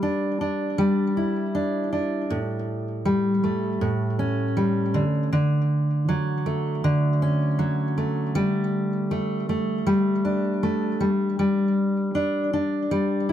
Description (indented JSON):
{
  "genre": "pop",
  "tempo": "79 BPM",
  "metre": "4/4",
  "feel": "straight",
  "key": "D major",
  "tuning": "A4 = 440 Hz",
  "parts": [
    { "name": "fingerpicked steel-string acoustic guitar", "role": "solo", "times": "0.0-13.3 s", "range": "A2 to E4", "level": "-21 LUFS", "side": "equal", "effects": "ping-pong delay" }
  ],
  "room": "moderate studio ambience, RT60 0.5 s",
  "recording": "none",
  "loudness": "-21 LUFS",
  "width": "side -10 dB against mid",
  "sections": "0.0-13.3 A section",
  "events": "none",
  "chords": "0.0 Em7/G; 2.3 A7; 5.0 Dmaj7; 8.4 Gsus2; 11.0 Em7/G (rootless)"
}